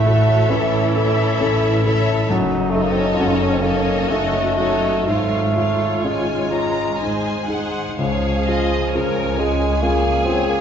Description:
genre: classical, romantic movement for piano and orchestra.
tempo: 60-69 BPM.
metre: 3/4.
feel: rubato.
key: Db major.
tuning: A4 = 440 Hz.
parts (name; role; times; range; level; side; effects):
rich studio violin section; melody; 0.0-10.6 s; Eb5 to Bb5; -28 LUFS; left 4 dB; none.
warm concert grand piano; melody; 0.0-10.6 s; Db2 to Db5; -21 LUFS; left 3 dB; none.
rich studio violin section; second line; 0.0-10.6 s; F4 to Eb5; -26 LUFS; left 2 dB; none.
clear bassoon; accompaniment; 0.0-10.6 s; E3 to Gb4; -22 LUFS; right 2 dB; none.
dark studio viola section; accompaniment; 0.0-10.6 s; Db4 to Bb4; -28 LUFS; equal; none.
dark studio double bass section; bass; 0.0-10.6 s; Gb1 to Db2; -26 LUFS; right 2 dB; none.
warm studio cello section; bass; 0.0-10.6 s; Db2 to A2; -24 LUFS; right 1 dB; none.
room: wet concert hall reverb, RT60 2.0 s.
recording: heard from further back in the room, nothing above 7.6 kHz.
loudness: -16 LUFS.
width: side -8 dB against mid.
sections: 0.0-10.6 A section.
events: none.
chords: 0.0 A; 2.3 Ebm7b5/Gb; 5.1 Db/Ab; 7.0 Ab; 8.0 Db.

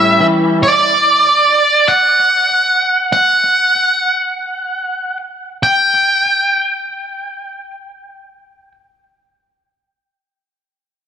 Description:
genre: rock.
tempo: 48 BPM (dotted quarters).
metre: 6/8.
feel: straight.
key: unclear.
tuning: A4 = 440 Hz.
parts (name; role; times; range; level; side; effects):
octave-fuzz lead guitar; melody; 0.0-8.7 s; D5 to G5; -12 LUFS; right 1 dB; distortion, analog delay.
twangy electric guitar; arpeggios; 0.0-0.6 s; A2 to G4; -15 LUFS; left 1 dB; ensemble chorus, analog delay.
room: moderate lush hall reverb, RT60 2.1 s.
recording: dark, warm production.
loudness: -11 LUFS.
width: side -8 dB against mid.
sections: 0.0-5.6 A section; 5.6-8.1 B section.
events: none.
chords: 0.0 A7; 0.6 N.C..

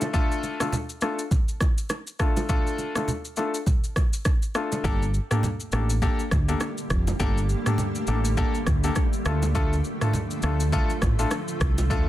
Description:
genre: afrobeats.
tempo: 102 BPM.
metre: 4/4.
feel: swing 58% on 16ths.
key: G minor.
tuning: A4 = 440 Hz.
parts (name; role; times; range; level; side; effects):
clear concert grand piano; accompaniment; 0.0-12.1 s; A3 to A4; -29 LUFS; left 3 dB; plate reverb.
afro-pop drum kit; drums; 0.0-12.1 s; kick drum, rim click, shaker, toms; -25 LUFS; equal; soft clipping on snare.
bongos and congas; percussion; 0.0-12.1 s; none; -32 LUFS; right 2 dB; none.
granular cloud pad; sustained chords; 5.7-12.1 s; D3 to A4; -32 LUFS; equal; built-in reverb.
fingered electric bass; bass; 4.8-12.1 s; F1 to D2; -24 LUFS; equal; none.
room: light reverb.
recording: dense, heavily limited modern master.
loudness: -22 LUFS.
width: side -14 dB against mid.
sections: 0.0-4.8 A section; 4.8-12.1 B section.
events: none.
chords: 0.0 Dm; 4.8 Gmadd9; 9.3 Dm.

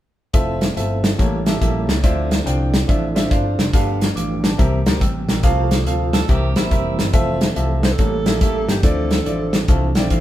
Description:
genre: uptempo gospel.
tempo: 141 BPM.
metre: 4/4.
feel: swing 66% on 8ths.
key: F major.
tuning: A4 = 440 Hz.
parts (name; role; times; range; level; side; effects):
clear concert grand piano; accompaniment; 0.3-10.2 s; G2 to E6; -24 LUFS; left 1 dB; none.
mellow tonewheel organ; sustained chords; 0.3-10.2 s; C3 to A4; -26 LUFS; right 1 dB; fast rotary speaker, chorus vibrato.
modern bright picked electric bass; bass; 0.3-10.2 s; F1 to D2; -22 LUFS; equal; none.
natural country drum kit; drums; 0.3-10.2 s; hi-hat, kick drum, snare drum; -18 LUFS; equal; none.
clean electric guitar; second line; 6.1-7.1 s; E4 to A4; -28 LUFS; right 6 dB; none.
clear alto saxophone; melody; 7.8-9.6 s; G4 to C5; -24 LUFS; right 5 dB; none.
room: moderate large studio reverb, RT60 0.8 s.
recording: band playing live in one room.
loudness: -16 LUFS.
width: side -13 dB against mid.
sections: 0.3-7.1 A section; 7.1-10.2 B section.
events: grand piano fill 9.7-10.2.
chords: 0.3 Fmaj7; 1.2 A7b9; 2.0 Dm9; 3.7 G9; 4.6 C7; 5.4 F/C; 6.3 C7; 7.1 Fmaj7; 8.0 A7b9; 8.8 Dm9.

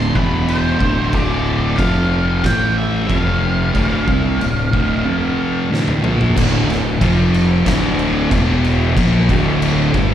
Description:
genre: stoner and doom metal.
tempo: 92 BPM.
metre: 4/4.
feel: straight.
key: D dorian.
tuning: A4 = 441 Hz.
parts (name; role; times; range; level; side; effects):
octave-fuzz lead guitar; melody; 0.0-5.7 s; C5 to C6; -23 LUFS; right 1 dB; distortion, slapback echo, digital delay.
thick fuzz guitar; riff; 0.0-10.1 s; D2 to C4; -16 LUFS; equal; distortion, slapback echo.
fuzz fingered electric bass; bass; 0.0-10.1 s; D1 to C2; -20 LUFS; equal; overdrive.
oversized low-tuned drum kit; drums; 0.2-10.1 s; crash cymbal, kick drum, snare drum, toms; -21 LUFS; equal; none.
room: small room ambience.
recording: live gig heard through the venue's PA, recital hall reverb.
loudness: -14 LUFS.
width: side -10 dB against mid.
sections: 0.0-6.4 A section; 6.4-10.1 B section.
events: drum fill 5.7-6.4.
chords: 0.2 E5; 0.8 D5; 1.8 F5; 2.4 A5; 3.1 F5; 3.8 Dm; 5.1 F5; 5.7 Dm; 6.4 D5; 7.0 F5; 7.7 D5; 8.3 E5; 9.0 Dm.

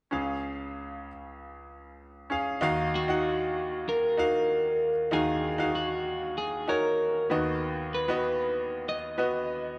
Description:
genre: pop.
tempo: 96 BPM.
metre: 4/4.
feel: straight.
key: unclear.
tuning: A4 = 440 Hz.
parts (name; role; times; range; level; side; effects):
bright grand piano; accompaniment; 0.1-9.8 s; C#2 to F#5; -32 LUFS; equal; none.
electric guitar at the edge of break-up; melody; 3.0-9.8 s; F#4 to D#5; -31 LUFS; equal; spring reverb.
room: wet studio reverb, RT60 0.6 s.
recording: band playing live in one room.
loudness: -29 LUFS.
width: mono.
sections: 0.1-2.6 A section; 2.6-9.8 B section.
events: none.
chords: 0.1 C#; 2.6 D#madd9; 7.3 B/D#.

